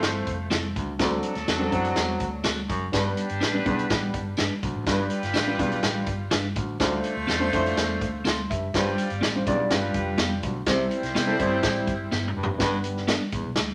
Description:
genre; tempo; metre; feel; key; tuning
uptempo 1960s-style soul; 124 BPM; 4/4; straight; unclear; A4 = 440 Hz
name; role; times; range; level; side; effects
warm horn section; second line; 0.0-12.3 s; F#3 to D5; -34 LUFS; equal; none
dark baby grand piano; accompaniment; 0.0-13.1 s; F3 to C6; -30 LUFS; equal; none
vintage muted fingered electric bass; bass; 0.0-13.7 s; F1 to C3; -36 LUFS; equal; none
swinging big-band drum kit; drums; 0.0-13.7 s; hi-hat, kick drum, snare drum, toms; -30 LUFS; equal; none
tambourine; percussion; 0.0-13.7 s; none; -43 LUFS; equal; none
clean electric guitar; stabs; 0.5-13.2 s; B3 to B4; -33 LUFS; equal; none
warm baritone saxophone; riff; 0.8-13.5 s; D2 to C3; -34 LUFS; equal; none
room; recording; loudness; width
moderate studio reverb, RT60 0.9 s; none; -25 LUFS; mono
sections
0.0-12.6 A section; 12.6-13.7 B section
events
grand piano fill 8.0-8.7; drum fill 12.1-12.6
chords
0.0 Fmaj7; 1.0 D7; 2.9 G; 4.9 G7; 6.8 Dm7; 8.7 G7sus4; 9.7 G7; 10.7 Cmaj7; 12.6 G

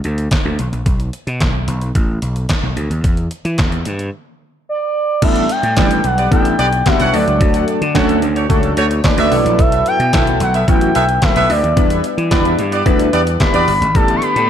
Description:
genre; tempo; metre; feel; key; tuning
early-eighties boogie funk; 110 BPM; 4/4; straight; E dorian; A4 = 445 Hz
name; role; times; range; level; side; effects
gritty slap bass; bass; 0.0-14.5 s; G1 to E3; -18 LUFS; equal; overdrive
detuned 8-bit digital drum machine; drums; 0.0-14.5 s; crash cymbal, handclaps, hi-hat, kick drum, snare drum; -17 LUFS; equal; overdrive
expressive portamento lead; melody; 4.7-14.5 s; D5 to C#6; -18 LUFS; equal; chorus, ping-pong delay
chorused polysynth; accompaniment; 5.2-14.2 s; F#3 to B4; -18 LUFS; left 1 dB; none
warm horn section; second line; 5.8-13.7 s; A3 to F#5; -21 LUFS; right 1 dB; ping-pong delay
clear studio string section; sustained chords; 13.9-14.5 s; D3 to G4; -21 LUFS; right 1 dB; none
room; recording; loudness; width
moderate plate reverb, RT60 1.5 s; dreamy mix soaked in reverb; -12 LUFS; side -9 dB against mid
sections
0.0-5.2 A section; 5.2-14.5 B section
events
break 4.1-5.2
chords
0.0 N.C.; 3.0 Em7; 5.2 A9sus4; 7.1 Dmaj7; 9.3 B7sus4; 11.8 Em7; 14.0 A9sus4

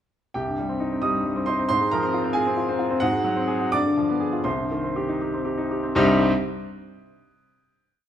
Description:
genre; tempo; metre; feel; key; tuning
classical, virtuoso piano study; 78-92 BPM (dotted quarters); 6/8; rubato; C minor; A4 = 440 Hz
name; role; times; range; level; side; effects
clear baby grand piano; solo; 0.3-6.3 s; C2 to Eb6; -21 LUFS; equal; none
room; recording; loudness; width
moderate recital hall reverb, RT60 1.4 s; none; -21 LUFS; side -10 dB against mid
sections
0.4-6.0 A section; 6.0-7.4 final chord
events
slowing down 2.4-6.0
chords
0.4 Cm; 1.7 Fm/Ab; 3.0 Ab7; 3.7 G7b9; 4.5 Cm

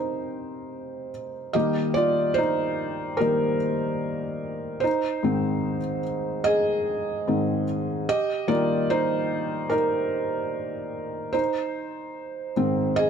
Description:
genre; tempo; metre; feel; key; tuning
pop; 73 BPM; 4/4; straight; Eb major; A4 = 440 Hz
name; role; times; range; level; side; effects
felt-muted upright piano; solo; 0.0-13.1 s; Ab2 to Eb5; -23 LUFS; equal; none
room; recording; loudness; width
light reverb; none; -23 LUFS; side -7 dB against mid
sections
0.0-1.5 A section; 1.5-13.1 B section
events
felt piano solo 0.0-1.5, 1.5-13.1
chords
0.0 Cm; 1.5 Eb; 4.8 Ab; 8.1 Eb; 11.3 Ab

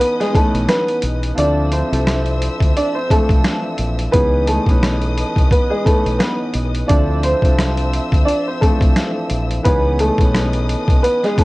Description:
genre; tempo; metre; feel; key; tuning
hip hop, boom-bap hip-hop; 87 BPM; 4/4; swing 58% on 16ths; unclear; A4 = 436 Hz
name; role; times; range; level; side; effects
warm upright piano; melody; 0.0-11.4 s; G#3 to D5; -19 LUFS; equal; high-pass filter, low-pass filter, cassette tape
warm baby grand piano; accompaniment; 0.0-11.4 s; E3 to B4; -23 LUFS; equal; cassette tape, high-pass filter, low-pass filter
warm symphonic string section; sustained chords; 0.0-11.4 s; B4 to E6; -29 LUFS; left 2 dB; high-pass filter, low-pass filter, cassette tape
boom bap sampler-style drum kit; drums; 0.0-11.4 s; hi-hat, kick drum, rim click, snare drum; -16 LUFS; equal; cassette tape
deep dub fingered electric bass; bass; 0.5-11.0 s; Bb1 to D2; -20 LUFS; equal; none
room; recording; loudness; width
little or no reverb; home recording on cassette; -14 LUFS; side -20 dB against mid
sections
0.0-11.4 A section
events
kick muted 1.4-2.1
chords
0.0 C#m9; 1.4 Dm9; 4.1 C#m9; 6.9 Dm9; 9.7 C#m9

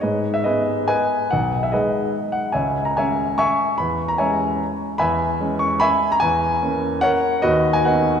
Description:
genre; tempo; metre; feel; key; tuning
classical, romantic triple-time dance for piano with dotted rhythms; 132-156 BPM; 3/4; rubato; G# minor, B major from 5.0 s; A4 = 440 Hz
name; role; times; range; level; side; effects
warm grand piano; solo; 0.0-8.2 s; B1 to C#6; -17 LUFS; equal; none
room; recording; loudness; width
wet church reverb, RT60 3.2 s; recorded in a church or concert hall; -18 LUFS; side -7 dB against mid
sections
0.0-8.2 A section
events
none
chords
0.0 G#m; 1.3 G#m/B; 2.6 C#m; 3.8 C#m/E; 6.2 F#7/E; 7.4 B/D#

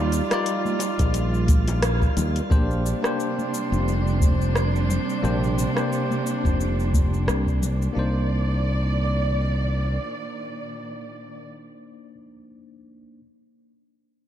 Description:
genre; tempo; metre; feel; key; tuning
sunset chillout; 88 BPM; 4/4; swing 56% on 16ths; unclear; A4 = 440 Hz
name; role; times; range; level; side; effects
bell-like tine electric piano; accompaniment; 0.0-13.2 s; G3 to D5; -29 LUFS; left 1 dB; auto-pan, low-pass filter, tape echo
warm symphonic string section; sustained chords; 0.0-11.4 s; Bb2 to D5; -30 LUFS; right 2 dB; none
modern bright fingered electric bass; bass; 0.0-10.0 s; F1 to Eb2; -23 LUFS; equal; none
drifting glass-harmonics texture; texture; 0.0-8.0 s; C5 to F6; -36 LUFS; left 1 dB; chorus, built-in reverb
deep house drum kit; drums; 0.1-7.9 s; cabasa, hi-hat, rim click; -30 LUFS; equal; overdrive
bongos and congas; percussion; 0.3-7.8 s; none; -34 LUFS; left 5 dB; none
electronic kick drum; drums; 1.0-7.6 s; none; -21 LUFS; equal; none
room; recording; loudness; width
light reverb; dark, warm production; -20 LUFS; side -11 dB against mid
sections
0.0-2.5 A section; 2.5-8.0 B section; 8.0-10.7 C section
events
band accent 1.8-2.2; filter sweep on fingered electric bass 2.5-8.0; filter sweep on tine electric piano 2.5-8.0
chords
0.0 Ebmaj9; 2.5 Bb69; 8.0 Cm9

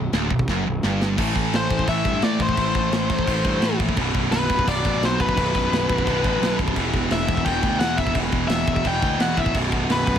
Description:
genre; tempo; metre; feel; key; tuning
heavy metal; 172 BPM; 4/4; straight; unclear; A4 = 439 Hz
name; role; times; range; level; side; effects
high-gain distorted guitar; riff; 0.0-10.2 s; B1 to A3; -23 LUFS; equal; distortion
fuzz picked electric bass; bass; 0.0-10.2 s; B0 to A2; -26 LUFS; equal; overdrive
tight metal drum kit; drums; 0.1-10.2 s; china cymbal, crash cymbal, kick drum, snare drum; -25 LUFS; equal; none
high-gain lead guitar; melody; 1.6-10.2 s; B4 to G5; -25 LUFS; left 2 dB; distortion
room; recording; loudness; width
light reverb; none; -19 LUFS; side -9 dB against mid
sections
0.0-1.2 A section; 1.2-10.2 B section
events
drum fill 0.5-1.2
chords
0.0 Bm; 1.2 Am; 4.0 B5; 6.8 Em; 9.6 B5

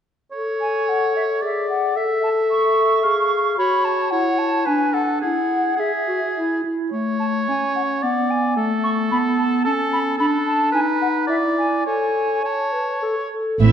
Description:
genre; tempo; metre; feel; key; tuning
quick classical-period movement for symphony orchestra; 109 BPM; 3/4; rubato; A major; A4 = 440 Hz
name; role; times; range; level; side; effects
clear oboe; second line; 0.3-13.3 s; G#4 to E#5; -24 LUFS; right 3 dB; none
mellow clarinet; second line; 0.3-13.6 s; A3 to C#5; -21 LUFS; left 2 dB; none
mellow hollow silver concert flute; second line; 0.6-13.0 s; E5 to C#6; -22 LUFS; left 1 dB; none
warm chamber violin section; melody; 13.6-13.7 s; E5; -28 LUFS; right 2 dB; none
warm chamber viola section; accompaniment; 13.6-13.7 s; C4 to E4; -21 LUFS; right 1 dB; none
dark chamber cello section; bass; 13.6-13.7 s; A2; -14 LUFS; right 3 dB; none
dark studio double bass section; bass; 13.6-13.7 s; A1; -13 LUFS; right 4 dB; none
room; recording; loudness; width
wet scoring stage reverb, RT60 1.7 s; dark, warm production; -18 LUFS; side -8 dB against mid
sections
0.3-13.6 A section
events
none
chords
0.3 A; 1.4 E7/G#; 2.0 A; 3.0 C#/G#; 3.6 F#5; 4.7 Bm/D; 5.2 E; 6.9 A; 8.0 G#dim/B; 8.6 Asus2; 9.7 A/C#; 10.2 Bm7/D (rootless); 10.7 B/D#; 11.3 E7; 11.9 A

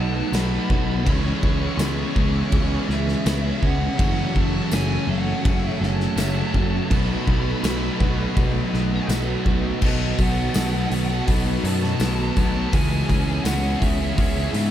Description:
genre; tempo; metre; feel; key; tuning
rock, shoegaze and dream pop; 82 BPM; 4/4; straight; B mixolydian; A4 = 441 Hz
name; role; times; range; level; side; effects
fuzz lead guitar; melody; 0.0-14.7 s; D#5 to C#6; -32 LUFS; equal; distortion, tape echo
phased string machine; sustained chords; 0.0-14.7 s; B3 to B5; -33 LUFS; equal; ensemble chorus, phaser
twelve-string electric guitar; arpeggios; 0.0-14.7 s; E3 to A4; -33 LUFS; right 4 dB; none
biting overdriven guitar; riff; 0.0-14.7 s; F#2 to A4; -29 LUFS; right 7 dB; reverse reverb
thick fuzz guitar; riff; 0.0-14.7 s; F#2 to C#4; -28 LUFS; left 8 dB; distortion, lush chorus
tight distorted guitar; riff; 0.0-14.7 s; F#2 to C#4; -32 LUFS; left 1 dB; distortion
picked electric bass; bass; 0.0-14.7 s; F#1 to G#2; -24 LUFS; equal; none
loose indie drum kit; drums; 0.3-14.7 s; crash cymbal, hi-hat, kick drum, snare drum; -24 LUFS; equal; none
tambourine; percussion; 0.3-13.6 s; none; -37 LUFS; left 6 dB; none
room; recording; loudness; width
light reverb, studio ambience; none; -19 LUFS; side -11 dB against mid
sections
0.0-9.8 A section; 9.8-14.7 B section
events
none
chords
0.0 B7; 1.1 C#m7; 4.0 F#m7; 6.9 B7; 12.7 C#m7

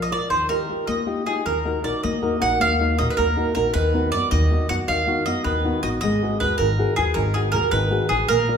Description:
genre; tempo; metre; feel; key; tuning
italian folk, Italian serenade; 106 BPM (dotted quarters); 6/8; straight; Eb minor; A4 = 440 Hz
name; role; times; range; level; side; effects
bowl-back mandolin; melody; 0.0-8.6 s; Ab4 to Gb5; -22 LUFS; right 3 dB; none
flamenco guitar; accompaniment; 0.0-8.6 s; Eb3 to D5; -24 LUFS; left 3 dB; none
upright bass; bass; 0.3-8.6 s; Ab1 to F#2; -24 LUFS; equal; none
room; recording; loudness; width
wet recital hall reverb, RT60 1.8 s; minimal, uncompressed stereo recording; -19 LUFS; side -7 dB against mid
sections
0.0-1.5 A section; 1.5-8.6 B section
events
none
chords
0.3 Ebadd9; 1.5 Ebm; 3.7 B/D#; 6.0 Abm7

